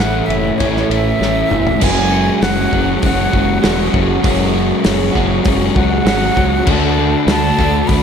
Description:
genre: rock, shoegaze and dream pop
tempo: 99 BPM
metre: 4/4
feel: straight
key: unclear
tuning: A4 = 440 Hz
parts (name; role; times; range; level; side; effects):
- breathy jazz flute; melody; 0.0-8.0 s; C#5 to B5; -20 LUFS; right 2 dB; analog delay
- warbly tape-like pad; sustained chords; 0.0-8.0 s; G#4 to C#6; -25 LUFS; right 2 dB; chorus, built-in reverb
- crunchy overdriven guitar; riff; 0.0-8.0 s; A2 to F#4; -18 LUFS; left 11 dB; wide subtle chorus
- crunchy overdriven guitar; riff; 0.0-8.0 s; A2 to F#4; -19 LUFS; right 12 dB; reverse reverb
- growling fingered electric bass; bass; 0.0-8.0 s; E1 to D2; -20 LUFS; equal; overdrive
- loose indie drum kit; drums; 0.0-8.0 s; crash cymbal, hi-hat, kick drum, ride cymbal, snare drum, toms; -19 LUFS; equal; none
room: light reverb, small room ambience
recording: none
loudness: -12 LUFS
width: side -7 dB against mid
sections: 0.0-1.8 A section; 1.8-8.0 B section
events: drum fill 1.2-1.8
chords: 0.0 Aadd9; 1.8 F#sus2; 6.7 D6

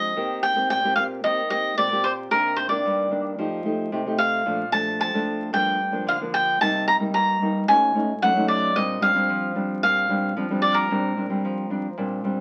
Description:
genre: samba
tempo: 112 BPM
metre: 4/4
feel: straight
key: Bb major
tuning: A4 = 440 Hz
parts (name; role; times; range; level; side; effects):
- cavaquinho; melody; 0.0-12.4 s; Bb4 to Bb5; -24 LUFS; equal; none
- nylon-string guitar; accompaniment; 0.0-12.4 s; F2 to G4; -28 LUFS; equal; none
room: moderate studio ambience, RT60 0.4 s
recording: very old 78 rpm record, vinyl crackle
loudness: -23 LUFS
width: mono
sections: 0.0-12.4 A section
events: none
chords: 0.2 Eb6; 2.3 Cm9; 3.4 F9; 4.5 Bbmaj7; 5.5 Gm7; 6.6 Cm7; 7.7 B9; 8.8 Bb69

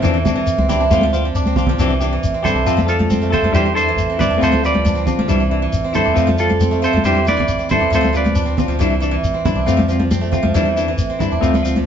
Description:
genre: highlife guitar band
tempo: 137 BPM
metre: 4/4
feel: straight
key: C major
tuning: A4 = 439 Hz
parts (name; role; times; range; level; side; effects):
- clean electric guitar; accompaniment; 0.0-11.8 s; E3 to A4; -21 LUFS; left 4 dB; none
- steel-string zither; arpeggios; 0.0-11.9 s; E3 to E4; -20 LUFS; right 3 dB; none
- deep dub fingered electric bass; bass; 0.0-11.9 s; A1 to D3; -21 LUFS; equal; none
- congas; percussion; 0.0-11.9 s; none; -21 LUFS; equal; none
- shekere; percussion; 0.0-11.7 s; none; -24 LUFS; left 2 dB; none
- semi-hollow electric guitar; melody; 2.4-8.6 s; F4 to D5; -18 LUFS; right 2 dB; none
room: wet studio reverb, RT60 0.9 s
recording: band playing live in one room, nothing above 7.7 kHz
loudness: -14 LUFS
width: side -8 dB against mid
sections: 0.0-1.8 A section; 1.8-11.9 B section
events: drum fill 1.5-1.8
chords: 0.0 Cadd9/E; 0.9 Dm7; 1.8 Cadd9; 2.7 F; 3.5 Cadd9/E; 4.4 Dm7; 5.3 Cadd9; 6.2 F; 7.0 Cadd9/E; 7.9 Dm7; 8.8 Cadd9; 9.7 F; 10.5 Cadd9/E

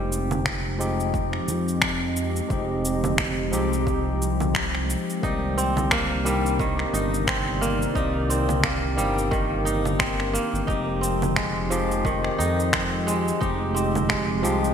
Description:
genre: organic downtempo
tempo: 88 BPM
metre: 4/4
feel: swing 58% on 16ths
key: F dorian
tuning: A4 = 441 Hz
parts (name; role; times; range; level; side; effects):
- barky tine electric piano; accompaniment; 0.0-14.7 s; Eb3 to D5; -28 LUFS; left 2 dB; auto-pan, sidechain pumping, low-pass filter, digital delay
- warbly tape-like pad; sustained chords; 0.0-14.7 s; C3 to Eb5; -30 LUFS; right 1 dB; chorus, built-in reverb, sidechain pumping
- kora; arpeggios; 0.0-0.7, 5.2-14.7 s; Eb3 to Eb4; -28 LUFS; right 1 dB; digital delay
- smooth gliding synth bass; bass; 0.0-14.7 s; F1 to F2; -28 LUFS; equal; sidechain pumping
- electronic cabasa, congas and finger snaps; drums; 0.1-14.7 s; none; -27 LUFS; equal; overdrive, small room reverb, gated reverb
- electronic kick drum; drums; 0.5-14.3 s; none; -31 LUFS; equal; overdrive, small room reverb
room: moderate lush hall reverb, RT60 3.0 s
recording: bright 1980s-style digital production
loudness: -21 LUFS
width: side -8 dB against mid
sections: 0.0-14.7 A section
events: none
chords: 0.0 Fm7; 5.2 Cm7; 10.7 Fm7

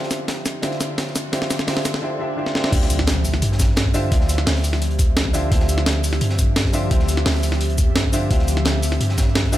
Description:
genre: liquid drum and bass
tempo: 172 BPM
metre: 4/4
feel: straight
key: D minor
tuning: A4 = 440 Hz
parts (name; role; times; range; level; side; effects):
- felt-muted upright piano; accompaniment; 0.0-9.6 s; D3 to E5; -26 LUFS; equal; low-pass filter, tape echo
- airy breathy pad; sustained chords; 0.0-9.6 s; F3 to E5; -30 LUFS; equal; chorus
- long sustained 808-style bass; bass; 0.0-9.6 s; D2 to G2; -21 LUFS; equal; high-pass filter
- crunchy breakbeat drum kit; drums; 0.0-9.6 s; hi-hat, snare drum; -32 LUFS; right 1 dB; high-pass filter on hats, studio reverb, high-pass filter on snare, high-pass filter on room
- riser, swell and impact; sound effects; 0.0-4.1 s; none; -30 LUFS; equal; none
- breakbeat sampler-style drum kit; drums; 0.1-9.6 s; cabasa, crash cymbal, hi-hat, snare drum; -23 LUFS; equal; studio reverb
- electronic kick drum; drums; 2.7-9.5 s; none; -20 LUFS; equal; studio reverb
room: light reverb, small room ambience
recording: none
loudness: -17 LUFS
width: side -14 dB against mid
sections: 0.0-2.7 A section; 2.7-9.6 B section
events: build-up 0.0-2.7; drum fill 0.0-2.0, 2.5; swell 2.0-2.7; drop 2.7-9.6; impact 2.7-4.1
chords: 0.0 Dm11

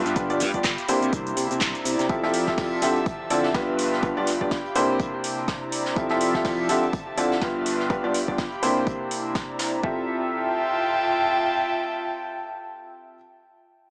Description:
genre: piano house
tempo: 124 BPM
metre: 4/4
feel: swing 58% on 16ths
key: F major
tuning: A4 = 439 Hz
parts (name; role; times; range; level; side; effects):
- clear upright piano; riff; 0.0-13.2 s; G2 to E5; -24 LUFS; equal; sidechain pumping, dub echo
- modern bright fingered electric bass; bass; 0.0-2.1 s; G1 to C3; -29 LUFS; equal; sidechain pumping
- airy breathy pad; texture; 0.0-13.4 s; C3 to Bb5; -27 LUFS; equal; chorus, sidechain pumping
- house drum kit; drums; 0.1-9.7 s; handclaps, hi-hat, shaker; -30 LUFS; equal; none
- jazz brush drum kit; drums; 0.1-9.7 s; hi-hat, snare drum; -36 LUFS; equal; sidechain pumping on hats, high-pass filter on hats, high-pass filter on snare, high-pass filter on room
- electronic kick drum; drums; 0.2-9.9 s; none; -29 LUFS; equal; none
room: moderate lush hall reverb, RT60 1.5 s, small room ambience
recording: small speaker sound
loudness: -22 LUFS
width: side -29 dB against mid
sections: 0.0-9.8 A section; 9.8-13.7 B section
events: none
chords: 0.0 G7; 0.9 C9; 2.1 Fmaj9; 3.1 Dm9; 3.8 G7; 4.8 C9; 6.0 Fmaj9; 6.9 Dm9; 7.7 G7; 8.6 C9; 9.8 Fmaj9

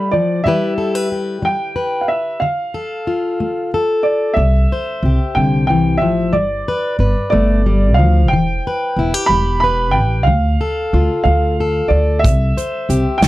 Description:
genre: indie folk with a building arrangement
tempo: 61 BPM (dotted quarters)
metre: 6/8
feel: straight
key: C major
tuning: A4 = 440 Hz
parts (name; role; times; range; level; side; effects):
- warm upright piano; melody; 0.0-13.3 s; D5 to B5; -19 LUFS; right 2 dB; none
- fingerpicked plugged-in steel-string acoustic guitar; accompaniment; 0.0-13.3 s; C3 to C5; -18 LUFS; left 2 dB; none
- upright bass; bass; 4.4-13.3 s; E1 to D2; -16 LUFS; equal; none
- natural country drum kit; drums; 12.2-13.3 s; hi-hat, kick drum, snare drum; -15 LUFS; right 1 dB; none
room: little or no reverb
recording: dry, close 1970s-style studio recording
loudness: -14 LUFS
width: side -16 dB against mid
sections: 0.0-4.4 A section; 4.4-13.3 A section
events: none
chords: 0.4 Em; 2.4 Dm; 4.4 C; 6.4 G; 8.3 Em; 10.3 Dm; 12.2 C

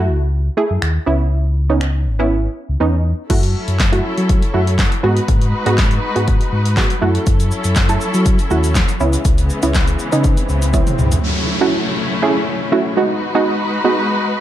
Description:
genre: dance-pop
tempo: 121 BPM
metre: 4/4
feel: straight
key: F# dorian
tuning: A4 = 441 Hz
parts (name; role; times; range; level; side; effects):
- punchy chord stab; accompaniment; 0.0-14.3 s; G#3 to A4; -19 LUFS; right 3 dB; chorus, sidechain pumping
- sub bass with octave; bass; 0.0-11.2 s; G#1 to F#3; -17 LUFS; equal; sidechain pumping
- punchy analog drum machine; drums; 0.8-11.2 s; crash cymbal, finger snaps, handclaps, hi-hat, kick drum, shaker, snare drum, toms; -17 LUFS; equal; none
- rich studio string section; sustained chords; 3.3-14.4 s; C#3 to B4; -22 LUFS; left 2 dB; sidechain pumping
- swell and downlifter; sound effects; 10.1-14.4 s; none; -25 LUFS; equal; none
room: light reverb, digital ambience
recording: dark, warm production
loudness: -14 LUFS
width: side -12 dB against mid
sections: 0.0-3.3 A section; 3.3-11.2 B section; 11.2-14.4 C section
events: silent gap 2.3-3.3; swell 10.1-11.2; drum fill 10.7-11.2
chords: 0.0 F#m7; 1.1 C#m7; 3.3 F#m7; 5.0 G#m7; 7.0 F#m7; 9.0 C#m7; 11.2 F#m7; 13.0 G#m7

